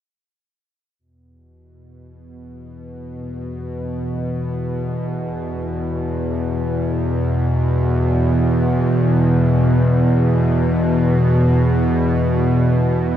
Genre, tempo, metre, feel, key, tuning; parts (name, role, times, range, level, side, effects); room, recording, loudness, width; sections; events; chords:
ambient; free time; A4 = 440 Hz
bowed-like drone; solo; 2.3-13.2 s; E2 to B2; -16 LUFS; equal; built-in reverb, diffuse ambient delay
moderate huge ambient reverb, RT60 8.2 s; -16 LUFS; side -10 dB against mid
1.0-13.2 A section
1.0 E5